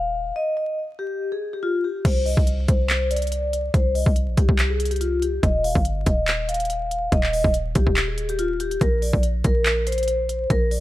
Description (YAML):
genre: hip hop, trap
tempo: 142 BPM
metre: 4/4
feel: half-time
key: unclear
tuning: A4 = 440 Hz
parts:
  - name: vibraphone with medium mallets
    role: melody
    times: 0.0-10.8 s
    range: F4 to F5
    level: -24 LUFS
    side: left 1 dB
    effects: low-pass filter
  - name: warm 808-style bass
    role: bass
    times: 0.0-10.8 s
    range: Eb1 to C2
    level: -23 LUFS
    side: equal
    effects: none
  - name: trap drum kit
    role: drums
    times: 2.0-10.8 s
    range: crash cymbal, handclaps, hi-hat, kick drum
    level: -22 LUFS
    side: equal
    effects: none
room: little or no reverb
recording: vinyl crackle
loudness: -19 LUFS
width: side -15 dB against mid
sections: 0.0-2.0 A section; 2.0-10.8 B section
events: filter sweep on vibraphone 2.0-8.8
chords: 0.0 Eb; 2.0 N.C.; 8.8 Bbsus2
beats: | 0.36 0.78 1.21 1.63 | 2.05 2.47 2.90 3.32 | 3.74 4.16 4.58 5.01 | 5.43 5.85 6.28 6.70 | 7.12 7.54 7.97 8.39 | 8.81 9.23 9.66 10.08 | 10.50